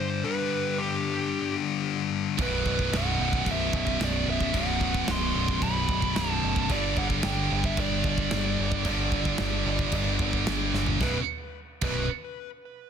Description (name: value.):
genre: heavy metal.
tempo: 111 BPM.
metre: 4/4.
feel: straight.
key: B minor.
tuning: A4 = 439 Hz.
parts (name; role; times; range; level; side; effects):
dark smooth lead guitar; melody; 0.0-12.1 s; G4 to C6; -32 LUFS; right 2 dB; overdrive, ping-pong delay.
high-gain distorted guitar; riff; 0.0-12.0 s; B1 to G3; -30 LUFS; left 8 dB; distortion.
fuzz guitar; riff; 2.4-12.0 s; B1 to G3; -35 LUFS; right 2 dB; distortion.
heavy high-gain guitar; riff; 2.4-12.0 s; B1 to G3; -30 LUFS; right 17 dB; distortion.
growling picked electric bass; bass; 2.4-12.1 s; B0 to G1; -31 LUFS; right 1 dB; overdrive.
modern studio drum kit; drums; 2.4-11.9 s; crash cymbal, kick drum, snare drum, toms; -31 LUFS; right 1 dB; soft clipping on snare.
room: light reverb, small room ambience.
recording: dense, heavily limited modern master.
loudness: -24 LUFS.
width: side -8 dB against mid.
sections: 0.0-11.0 A section; 11.0-12.9 B section.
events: drum fill 10.7.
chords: 0.0 G; 2.4 B5; 6.7 G5; 11.0 B5.